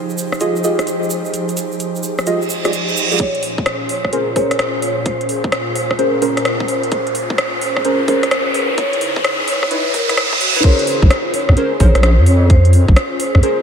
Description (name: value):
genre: UK garage, two-step garage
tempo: 129 BPM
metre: 4/4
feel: swing 65% on 16ths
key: Bb dorian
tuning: A4 = 442 Hz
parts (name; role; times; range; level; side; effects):
- airy breathy pad; sustained chords; 0.0-13.6 s; Bb2 to Db5; -25 LUFS; equal; chorus, sidechain pumping
- egg shaker; percussion; 0.1-3.2 s; none; -28 LUFS; right 5 dB; none
- garage drum kit; drums; 0.3-13.6 s; crash cymbal, hi-hat, rim click; -21 LUFS; left 1 dB; high-pass filter on hats, high-pass filter on snare, high-pass filter on cymbals
- deep mellow chord stab; stabs; 0.4-13.6 s; Db4 to Eb5; -20 LUFS; equal; chorus, ping-pong delay
- reverse cymbal and riser; sound effects; 2.5-10.6 s; none; -23 LUFS; right 3 dB; none
- vibraphone with medium mallets; melody; 3.2-13.4 s; Gb4 to Db5; -23 LUFS; right 1 dB; ping-pong delay
- electronic kick drum; drums; 3.2-13.4 s; none; -14 LUFS; equal; overdrive, high-pass filter on kick
- deep soft wobble bass; bass; 11.0-13.4 s; Bb1 to F2; -10 LUFS; equal; chorus
room: moderate cathedral reverb, RT60 5.1 s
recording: dreamy mix soaked in reverb, high-pass filter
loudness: -13 LUFS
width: side -7 dB against mid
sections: 0.0-3.2 A section; 3.2-10.6 B section; 10.6-13.6 C section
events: reverse cymbal 2.5-3.2, 9.7-10.6; build-up 3.2-10.6; riser 3.2-10.6; filter sweep 3.2-10.6; drop 10.6-13.6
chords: 0.0 Fm9; 3.2 Bbm9; 8.5 Dbm9; 10.6 Bbm9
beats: 0.41 0.87 | 1.34 1.80 2.27 2.73 | 3.20 3.66 4.13 4.59 | 5.06 5.52 5.99 6.45 | 6.92 7.38 7.85 8.31 | 8.78 9.24 9.71 10.17 | 10.64 11.10 11.57 12.04 | 12.50 12.96 13.43